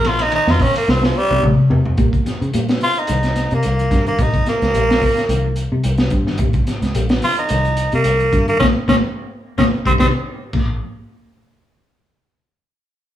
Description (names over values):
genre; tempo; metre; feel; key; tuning
afrobeat; 109 BPM; 4/4; swing 54% on 16ths; Bb dorian; A4 = 436 Hz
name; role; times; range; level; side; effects
raspy tenor saxophone; melody; 0.0-10.1 s; F3 to F4; -18 LUFS; right 1 dB; none
clean electric guitar; arpeggios; 0.0-10.7 s; Bb2 to Bb3; -24 LUFS; left 4 dB; analog delay
fingered electric bass; bass; 0.0-10.8 s; Bb1 to Db3; -19 LUFS; equal; none
crunchy breakbeat drum kit; drums; 0.0-10.7 s; crash cymbal, hi-hat, kick drum, ride cymbal, snare drum, toms; -19 LUFS; equal; none
room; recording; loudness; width
moderate stone room reverb, RT60 1.0 s; band playing live in one room, studio reverb; -14 LUFS; side -12 dB against mid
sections
0.0-2.0 A section; 2.0-10.8 B section; 10.8-13.0 C section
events
tenor saxophone solo 0.0-2.0, 2.0-10.8; drum fill 0.9-2.0, 10.3-10.8; band accent 8.6-10.8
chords
0.0 Bbm; 0.9 C5; 2.0 Bb5; 3.1 Cm7; 4.2 Bb5; 5.3 Cm; 6.4 Bb5; 7.5 Cm7; 8.6 Bb7(no3); 9.7 Cm; 10.5 N.C.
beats
0.32 0.87 1.43 | 1.98 2.53 3.08 3.64 | 4.19 4.74 5.29 5.85 | 6.40 6.95 7.50 8.06 | 8.61 9.16 9.71 10.26